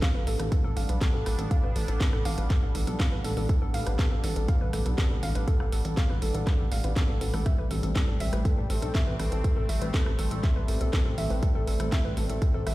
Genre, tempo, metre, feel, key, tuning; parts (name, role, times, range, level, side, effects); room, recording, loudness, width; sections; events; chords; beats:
melodic techno; 121 BPM; 4/4; straight; A4 = 439 Hz
sweeping resonant pad; sustained chords; 0.0-12.7 s; G3 to D4; -36 LUFS; equal; chorus, sidechain pumping
woody wave-folded pluck; arpeggios; 0.0-12.7 s; A4 to F5; -35 LUFS; equal; chorus, cassette tape, sidechain pumping, tape echo
electronic kick drum; drums; 0.0-12.5 s; -25 LUFS; equal
house drum kit; drums; 0.0-12.7 s; hi-hat, rim click, snare drum; -36 LUFS; equal
sub drop; sound effects; 0.0-1.5 s; -39 LUFS; equal
plucky analog bass; bass; 0.1-12.7 s; A1 to B1; -28 LUFS; equal; sidechain pumping
little or no reverb; played on a big sound system in a bare room, large studio reverb; -24 LUFS; side -17 dB against mid
0.0-12.7 A section
impact 0.0-1.5
0.0 G/A; 7.5 Am7
0.02 0.52 1.01 | 1.51 2.01 2.50 3.00 | 3.49 3.99 4.49 4.98 | 5.48 5.97 6.47 6.96 | 7.46 7.96 8.45 8.95 | 9.44 9.94 10.44 10.93 | 11.43 11.92 12.42